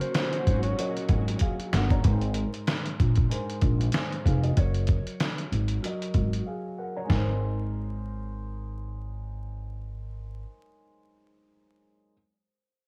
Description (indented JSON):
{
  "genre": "hip hop, boom-bap hip-hop",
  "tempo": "95 BPM",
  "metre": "4/4",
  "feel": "swing 56% on 16ths",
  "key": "Ab mixolydian",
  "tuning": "A4 = 440 Hz",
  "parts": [
    { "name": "breathy tenor saxophone", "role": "melody", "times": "0.0-0.9 s", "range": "C5 to Db5", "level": "-35 LUFS", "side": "equal", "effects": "high-pass filter, low-pass filter, tape echo" },
    { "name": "dark concert grand piano", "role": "accompaniment", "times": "0.0-12.1 s", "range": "Ab2 to Bb5", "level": "-38 LUFS", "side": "equal", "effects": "high-pass filter, low-pass filter, cassette tape" },
    { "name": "warm studio string section", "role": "sustained chords", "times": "0.0-2.0 s", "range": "Bb2 to Gb4", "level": "-38 LUFS", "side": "equal", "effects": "high-pass filter, low-pass filter, cassette tape" },
    { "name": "trip hop sampler-style drum kit", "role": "drums", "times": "0.0-7.3 s", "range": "hi-hat, kick drum, snare drum", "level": "-28 LUFS", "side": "equal", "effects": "cassette tape" },
    { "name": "upright bass", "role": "bass", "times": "0.5-10.4 s", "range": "F1 to Bb1", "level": "-30 LUFS", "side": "equal", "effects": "none" }
  ],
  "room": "small room ambience",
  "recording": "home recording on cassette, vinyl crackle",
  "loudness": "-27 LUFS",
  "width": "mono",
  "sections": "0.0-2.0 A section; 2.0-7.1 B section; 7.1-9.6 C section",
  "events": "drum fill 1.4-2.0; break 6.5-7.1",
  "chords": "0.0 Gb; 2.0 Abadd9; 4.6 Gb; 7.1 Abadd9"
}